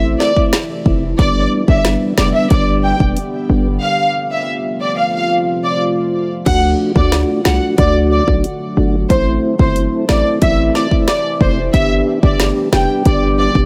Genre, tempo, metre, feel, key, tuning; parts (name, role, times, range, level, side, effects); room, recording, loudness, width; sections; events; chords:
dancehall; 91 BPM; 4/4; straight; A4 = 440 Hz
mellow tonewheel organ; accompaniment; 0.0-13.7 s; G3 to G4; -20 LUFS; equal; fast rotary speaker
deep dark ambient pad; sustained chords; 0.2-13.7 s; C3 to G4; -25 LUFS; equal; chorus, built-in reverb, sidechain pumping
hard-hitting 808-style bass; bass; 0.0-13.7 s; E1 to D2; -19 LUFS; equal
warm studio violin section; melody; 0.2-13.5 s; C5 to G5; -20 LUFS; equal; delay
deep house drum kit; drums; 0.2-13.7 s; crash cymbal, hi-hat, kick drum, snare drum; -19 LUFS; equal
little or no reverb; -15 LUFS; mono
0.0-6.5 A section; 6.5-13.7 B section
drums muted 3.8-6.5
0.0 Am; 1.2 G; 3.8 F; 6.5 D; 9.1 Am; 11.7 G